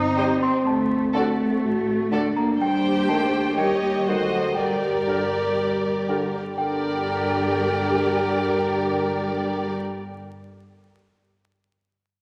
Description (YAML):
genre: cinematic, playful, whimsical film cue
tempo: 122 BPM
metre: 4/4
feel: straight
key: G minor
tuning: A4 = 441 Hz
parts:
  - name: small celesta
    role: melody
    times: 0.0-9.7 s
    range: F#5 to Eb6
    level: -33 LUFS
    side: equal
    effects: none
  - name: dark French horn section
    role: sustained chords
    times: 0.0-9.7 s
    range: C4 to Bb4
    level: -28 LUFS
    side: equal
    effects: none
  - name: rich chamber double bass section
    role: bass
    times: 0.0-9.7 s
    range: G1 to Eb2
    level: -38 LUFS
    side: equal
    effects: none
  - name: warm chamber cello section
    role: bass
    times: 0.0-9.7 s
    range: F#3 to Eb4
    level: -30 LUFS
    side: equal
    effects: none
  - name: dark chamber violin section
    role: melody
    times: 0.2-9.7 s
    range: D5 to G5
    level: -34 LUFS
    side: equal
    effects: none
  - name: clear clarinet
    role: second line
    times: 0.2-9.7 s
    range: A4 to Db5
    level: -38 LUFS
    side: equal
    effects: none
  - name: hollow concert flute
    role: second line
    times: 0.2-9.7 s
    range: F#5 to G5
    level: -35 LUFS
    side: equal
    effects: none
  - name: rich chamber violin section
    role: second line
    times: 0.2-9.7 s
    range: A4 to Db5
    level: -35 LUFS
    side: equal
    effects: none
  - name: dark bassoon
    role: accompaniment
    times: 0.2-9.7 s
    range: D3 to G3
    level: -33 LUFS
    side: equal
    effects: none
  - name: warm studio viola section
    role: accompaniment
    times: 0.2-9.7 s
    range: F#4 to G4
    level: -31 LUFS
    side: equal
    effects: none
room: wet scoring stage reverb, RT60 1.9 s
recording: vinyl crackle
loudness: -23 LUFS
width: mono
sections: 0.0-6.6 A section; 6.6-10.5 B section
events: none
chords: 0.0 Cm; 0.7 D; 2.6 Cm/Eb; 3.6 Eb7; 4.1 D7b9; 4.6 Gm